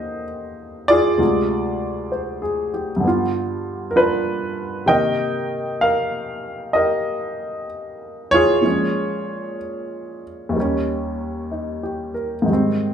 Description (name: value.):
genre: solo jazz.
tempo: 64 BPM.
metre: 4/4.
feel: swing 68% on 8ths, rubato.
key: Eb major.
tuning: A4 = 440 Hz.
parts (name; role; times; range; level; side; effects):
warm baby grand piano; solo; 0.0-12.9 s; D2 to G5; -19 LUFS; equal; none.
room: wet club reverb, RT60 0.8 s.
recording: heard from further back in the room.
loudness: -18 LUFS.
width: side -8 dB against mid.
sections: 0.0-12.9 A section.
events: none.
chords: 0.0 Eb6; 1.2 Dm7b5; 3.0 G7; 4.9 Cm7; 8.7 Bbm7; 10.6 Eb7.